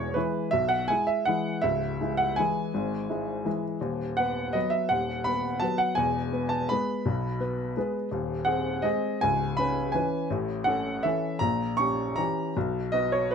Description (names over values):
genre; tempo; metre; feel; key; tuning
classical, piano waltz; 152-177 BPM; 3/4; rubato; E major; A4 = 440 Hz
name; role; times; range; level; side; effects
clear upright piano; solo; 0.0-13.3 s; C#1 to C#6; -25 LUFS; equal; none
room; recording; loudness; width
light reverb; none; -25 LUFS; side -6 dB against mid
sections
0.0-13.3 A section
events
none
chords
0.0 E; 1.6 C#m; 3.8 B/D#; 6.0 E; 8.1 G#7/D#; 9.2 C#m7; 10.3 F#m7/A; 11.4 A#dim7; 12.6 B